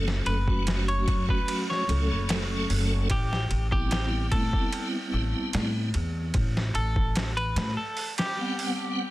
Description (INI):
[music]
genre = trip hop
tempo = 74 BPM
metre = 4/4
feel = straight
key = unclear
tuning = A4 = 440 Hz
[part]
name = tonewheel organ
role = accompaniment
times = 0.0-9.1 s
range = F#3 to F#5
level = -31 LUFS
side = equal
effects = chorus vibrato, fast rotary speaker, tremolo, tape echo
[part]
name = upright bass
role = bass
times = 0.0-7.7 s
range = F#1 to A2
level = -28 LUFS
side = equal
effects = tube saturation
[part]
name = boom bap sampler-style drum kit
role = drums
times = 0.1-8.8 s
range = hi-hat, kick drum, ride cymbal, snare drum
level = -30 LUFS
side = equal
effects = overdrive, studio reverb
[part]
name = clean electric guitar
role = melody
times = 0.3-9.1 s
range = G4 to C#5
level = -32 LUFS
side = equal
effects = tremolo, tape echo
[sound]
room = little or no reverb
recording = dense, heavily limited modern master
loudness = -24 LUFS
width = side -17 dB against mid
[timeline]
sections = 0.0-9.1 A section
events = break 8.0-9.1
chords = 0.0 F#m; 3.1 Am7